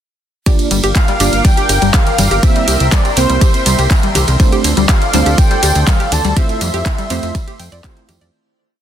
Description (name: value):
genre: progressive house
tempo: 122 BPM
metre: 4/4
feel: straight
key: G dorian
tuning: A4 = 439 Hz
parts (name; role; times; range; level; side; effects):
- lush unison pad; sustained chords; 0.7-8.3 s; A4 to D6; -23 LUFS; equal; chorus, phaser, sidechain pumping
- analog pluck; arpeggios; 0.5-8.2 s; G3 to G5; -21 LUFS; left 3 dB; chorus, sidechain pumping, tape echo
- deep mellow chord stab; stabs; 0.5-8.3 s; A3 to D5; -21 LUFS; right 5 dB; chorus, sidechain pumping, tape echo
- electronic kick drum; drums; 0.5-7.9 s; none; -12 LUFS; equal; none
- pop drum kit; drums; 0.5-8.3 s; handclaps, hi-hat, ride cymbal; -19 LUFS; right 1 dB; sidechain pumping on hats, sidechain pumping on cymbals
- tambourine; percussion; 0.5-8.3 s; none; -25 LUFS; right 2 dB; none
- plucky analog bass; bass; 0.7-8.3 s; G1 to F2; -15 LUFS; equal; sidechain pumping
- wide unison lead; melody; 1.0-8.1 s; C5 to A5; -20 LUFS; equal; vintage 12-bit sampler grit, sidechain pumping, tape echo
- cowbell and congas; percussion; 1.7-8.3 s; none; -25 LUFS; equal; none
room: digital ambience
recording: dense, heavily limited modern master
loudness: -10 LUFS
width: side -10 dB against mid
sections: 0.5-8.3 drop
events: drop 0.5-8.3; fade-out 5.7-8.3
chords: 0.5 Gm7; 2.4 C7; 4.4 Dm7; 6.4 Fmaj7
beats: | 0.46 0.95 1.45 1.94 | 2.43 2.92 3.41 3.91 | 4.40 4.89 5.38 5.87 | 6.37 6.86 7.35 7.84